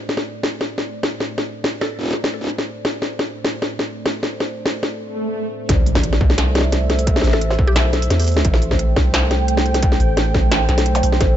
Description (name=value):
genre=half-time drum and bass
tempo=174 BPM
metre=4/4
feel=half-time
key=A minor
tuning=A4 = 438 Hz
part: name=dark analog pad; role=sustained chords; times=0.0-11.4 s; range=A3 to G5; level=-25 LUFS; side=right 1 dB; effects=chorus, phaser, sidechain pumping
part: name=industrial drum kit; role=drums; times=0.1-11.3 s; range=hi-hat, snare drum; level=-20 LUFS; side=left 1 dB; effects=none
part: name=mallet-like synth pluck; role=melody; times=1.8-2.0, 7.3-8.0 s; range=G4 to A4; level=-28 LUFS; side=left 2 dB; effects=chorus, ping-pong delay
part: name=swell and impact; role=sound effects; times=5.1-7.1 s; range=none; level=-25 LUFS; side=equal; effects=none
part: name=long sustained 808-style bass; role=bass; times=5.7-11.4 s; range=A1 to E2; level=-18 LUFS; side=equal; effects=none
part: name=electronic kick drum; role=drums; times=5.7-11.3 s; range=none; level=-19 LUFS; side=equal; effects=distortion
room=light reverb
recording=nothing above 7.9 kHz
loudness=-16 LUFS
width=side -11 dB against mid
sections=0.0-5.7 A section; 5.7-11.4 B section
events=swell 5.1-5.7; drop 5.7-11.4; impact 5.7-7.1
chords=0.0 Am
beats=| 0.17 0.52 0.86 1.21 | 1.55 1.90 2.24 2.59 | 2.93 3.28 3.62 3.97 | 4.31 4.66 5.00 5.35 | 5.69 6.04 6.38 6.72 | 7.07 7.42 7.76 8.10 | 8.45 8.79 9.14 9.48 | 9.83 10.17 10.52 10.86 | 11.21